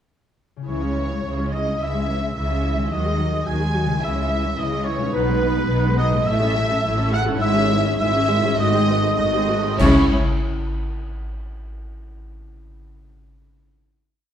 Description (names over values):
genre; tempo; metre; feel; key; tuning
classical, dramatic, fast romantic movement for symphony orchestra; 97-109 BPM; 4/4; straight; C# minor; A4 = 440 Hz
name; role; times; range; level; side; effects
concert harp; arpeggios; 0.6-10.1 s; G#2 to E5; -28 LUFS; left 1 dB; none
warm symphonic violin section; melody; 0.7-10.1 s; E4 to G#5; -29 LUFS; left 2 dB; none
warm oboe; second line; 0.7-10.1 s; B4 to G#5; -27 LUFS; right 1 dB; none
warm symphonic violin section; second line; 0.7-10.1 s; B4 to G#5; -27 LUFS; equal; none
warm symphonic viola section; accompaniment; 0.7-10.1 s; E3 to A4; -25 LUFS; left 1 dB; none
dark studio double bass section; bass; 0.7-10.1 s; G#1 to D#2; -24 LUFS; equal; none
rich symphonic cello section; bass; 0.7-10.1 s; G#2 to D#3; -26 LUFS; right 1 dB; none
cymbal swell, clash cymbals and concert bass drum; percussion; 7.4-11.0 s; none; -26 LUFS; equal; none
room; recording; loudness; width
wet stone room reverb, RT60 1.3 s; dark, warm production; -18 LUFS; side -9 dB against mid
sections
0.7-9.8 A section; 9.8-12.2 final chord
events
slowing down 4.0-9.8; band accent 9.8-10.4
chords
0.7 C#m; 2.9 G#7/D#; 4.0 C#m; 5.1 G#m/B; 6.3 A; 7.4 C#m/G#; 8.6 G#7b9; 9.8 C#m